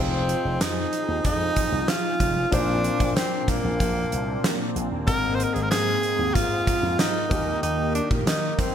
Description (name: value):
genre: 1980s-style pop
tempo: 94 BPM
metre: 4/4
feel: straight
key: F dorian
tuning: A4 = 439 Hz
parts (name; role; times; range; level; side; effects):
- clear tenor saxophone; melody; 0.0-8.7 s; Bb3 to C5; -25 LUFS; right 1 dB; digital delay
- warm concert grand piano; accompaniment; 0.0-8.7 s; Ab2 to C5; -30 LUFS; left 3 dB; none
- phased analog pad; sustained chords; 0.0-8.7 s; Eb3 to Bb4; -32 LUFS; equal; phaser, chorus
- slap bass with an envelope filter; bass; 0.0-8.5 s; F1 to Eb3; -29 LUFS; equal; none
- gated 80s drum kit; drums; 0.3-8.7 s; hi-hat, kick drum, snare drum; -26 LUFS; equal; none
room: moderate plate reverb, RT60 3.5 s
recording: bright 1980s-style digital production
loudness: -21 LUFS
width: side -9 dB against mid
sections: 0.0-8.7 A section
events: none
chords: 0.0 Fm7; 2.5 Bbadd9; 5.1 Abadd9; 7.3 Eb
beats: 0.61 1.24 1.88 | 2.52 3.16 3.80 4.44 | 5.07 5.71 6.35 6.99 | 7.63 8.27